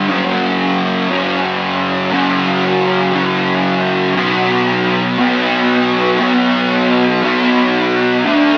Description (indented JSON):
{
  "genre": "rock",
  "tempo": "118 BPM",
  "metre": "4/4",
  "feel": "straight",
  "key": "unclear",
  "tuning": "A4 = 440 Hz",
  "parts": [
    { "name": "fuzz guitar", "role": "solo", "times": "0.0-8.6 s", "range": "F#2 to D4", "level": "-14 LUFS", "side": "equal", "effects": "distortion, ensemble chorus" }
  ],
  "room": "wet plate reverb, RT60 2.9 s",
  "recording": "dreamy mix soaked in reverb, small speaker sound",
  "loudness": "-14 LUFS",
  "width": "mono",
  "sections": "0.0-8.3 A section",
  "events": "none",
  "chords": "0.1 F#5; 4.2 B5"
}